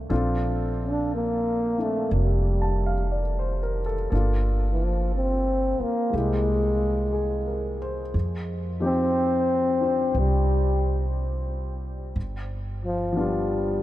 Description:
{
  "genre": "jazz ballad",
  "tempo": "60 BPM",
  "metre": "4/4",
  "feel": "swing 67% on 8ths",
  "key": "unclear",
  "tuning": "A4 = 440 Hz",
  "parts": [
    { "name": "warm grand piano", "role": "accompaniment", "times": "0.0-13.8 s", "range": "F3 to A5", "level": "-31 LUFS", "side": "left 2 dB", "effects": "none" },
    { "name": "upright bass", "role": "bass", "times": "0.0-13.8 s", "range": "F1 to F2", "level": "-26 LUFS", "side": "equal", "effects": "none" },
    { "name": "breathy trombone", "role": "melody", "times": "0.8-13.8 s", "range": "E3 to D4", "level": "-26 LUFS", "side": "equal", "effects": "none" }
  ],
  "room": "moderate huge ambient reverb, RT60 7.6 s",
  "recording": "in a vast, echoing space",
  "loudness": "-22 LUFS",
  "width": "side -15 dB against mid",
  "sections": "0.0-13.8 A section",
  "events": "none",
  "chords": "0.1 Bbmaj7; 4.1 Gm7; 6.1 C7b13; 8.1 Fsus2; 12.2 G7"
}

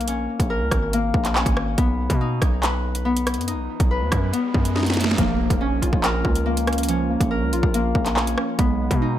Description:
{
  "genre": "hip hop, drill",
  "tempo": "141 BPM",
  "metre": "4/4",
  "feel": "half-time",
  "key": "Bb phrygian",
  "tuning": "A4 = 440 Hz",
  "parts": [
    { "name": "Celtic harp", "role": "arpeggios", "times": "0.0-9.2 s", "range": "Bb3 to B4", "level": "-24 LUFS", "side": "left 4 dB", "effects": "ping-pong delay" },
    { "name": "distorted 808-style bass", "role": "bass", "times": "0.0-9.2 s", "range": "Ab1 to B2", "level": "-24 LUFS", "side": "equal", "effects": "distortion" },
    { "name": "drill drum kit", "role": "drums", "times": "0.0-9.0 s", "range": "handclaps, hi-hat, kick drum, rim click, snare drum", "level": "-22 LUFS", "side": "equal", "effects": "overdrive" },
    { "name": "riser and impact", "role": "sound effects", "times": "3.6-6.9 s", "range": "none", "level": "-32 LUFS", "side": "right 6 dB", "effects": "none" },
    { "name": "warbly lo-fi synth keys", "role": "accompaniment", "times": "5.2-9.2 s", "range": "F3 to F4", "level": "-26 LUFS", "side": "right 5 dB", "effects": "chorus" }
  ],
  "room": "light reverb, digital ambience",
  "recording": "none",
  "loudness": "-19 LUFS",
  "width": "side -12 dB against mid",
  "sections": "0.0-5.2 A section; 5.2-9.2 B section",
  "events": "riser 3.6-5.2; drum fill 4.8-5.2; impact 5.2-6.9",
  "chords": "0.0 Bbm; 1.8 B; 5.2 Bbm; 8.6 B6"
}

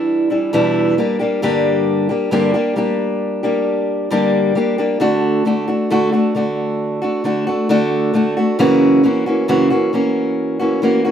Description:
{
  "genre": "pop",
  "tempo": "67 BPM",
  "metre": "4/4",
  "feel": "straight",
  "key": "D major",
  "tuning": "A4 = 441 Hz",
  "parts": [
    { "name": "fingerpicked steel-string acoustic guitar", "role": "solo", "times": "0.0-11.1 s", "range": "E2 to G4", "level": "-14 LUFS", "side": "equal", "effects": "slapback echo" }
  ],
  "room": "light reverb",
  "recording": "recorded outdoors, with no room sound",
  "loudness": "-14 LUFS",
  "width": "side -9 dB against mid",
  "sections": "0.0-5.0 A section; 5.0-11.1 B section",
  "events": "none",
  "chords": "0.0 Em7; 1.0 Gm; 5.0 D; 8.6 F#7"
}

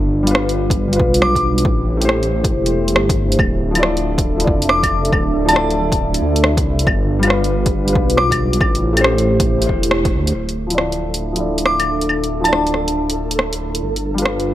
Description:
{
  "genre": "future garage",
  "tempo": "138 BPM",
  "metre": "4/4",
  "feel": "swing 65% on 16ths",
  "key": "D dorian",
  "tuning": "A4 = 445 Hz",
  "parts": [
    { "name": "dark analog pad", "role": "sustained chords", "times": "0.0-14.5 s", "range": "G3 to E5", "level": "-21 LUFS", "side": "equal", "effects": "chorus, sidechain pumping" },
    { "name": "dark detuned saw bass", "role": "bass", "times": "0.0-14.5 s", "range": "D1 to D2", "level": "-20 LUFS", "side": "equal", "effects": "sidechain pumping" },
    { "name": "felt-muted upright piano", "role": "accompaniment", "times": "0.2-14.5 s", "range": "F3 to D5", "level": "-23 LUFS", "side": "left 2 dB", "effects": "sidechain pumping, low-pass filter, tape echo" },
    { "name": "deep house drum kit", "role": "drums", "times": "0.3-14.5 s", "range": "claves, hi-hat, rim click", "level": "-19 LUFS", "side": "equal", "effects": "overdrive" },
    { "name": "electronic kick drum", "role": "drums", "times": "0.7-10.1 s", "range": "none", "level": "-19 LUFS", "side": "equal", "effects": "overdrive" },
    { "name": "glassy synth bell", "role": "melody", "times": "1.2-1.4, 4.7-8.4, 11.7-13.0 s", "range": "A5 to D6", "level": "-20 LUFS", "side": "equal", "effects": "chorus, analog delay" },
    { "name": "flickering grainy texture", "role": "texture", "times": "10.9-14.5 s", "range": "A4", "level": "-29 LUFS", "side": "right 3 dB", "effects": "built-in reverb" }
  ],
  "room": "moderate lush hall reverb, RT60 1.7 s",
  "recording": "none",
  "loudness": "-14 LUFS",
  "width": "side -13 dB against mid",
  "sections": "0.0-10.3 A section; 10.3-14.5 B section",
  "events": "band accent 9.9",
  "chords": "0.0 G7; 1.7 Am7; 3.4 Dmadd9; 6.9 G7; 8.6 Am7; 10.3 Dmadd9; 13.8 G7"
}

